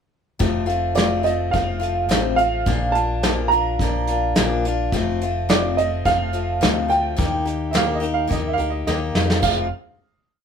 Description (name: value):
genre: folk rock and heartland rock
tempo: 106 BPM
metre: 4/4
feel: straight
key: F mixolydian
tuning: A4 = 441 Hz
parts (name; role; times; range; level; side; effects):
- picked steel-string acoustic guitar; accompaniment; 0.4-9.7 s; F2 to G4; -24 LUFS; left 4 dB; none
- fingered electric bass; bass; 0.4-9.7 s; F1 to F2; -26 LUFS; equal; none
- soft brush drum kit; drums; 0.4-9.6 s; crash cymbal, hi-hat, kick drum, snare drum; -22 LUFS; equal; none
- warm baby grand piano; melody; 1.0-9.7 s; D5 to Bb5; -22 LUFS; right 4 dB; none
- bright upright piano; second line; 7.7-9.7 s; Eb5 to F5; -25 LUFS; right 8 dB; none
room: moderate studio ambience, RT60 0.4 s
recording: band playing live in one room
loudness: -18 LUFS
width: side -7 dB against mid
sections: 0.4-9.4 verse; 9.4-10.4 final chord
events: drum fill 8.9-9.4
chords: 0.4 F; 2.7 Bb; 4.9 F; 7.2 Eb; 9.4 F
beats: | 0.40 0.97 1.53 2.10 | 2.67 3.23 3.80 4.37 | 4.93 5.50 6.06 6.62 | 7.19 7.75 8.31 8.87 | 9.44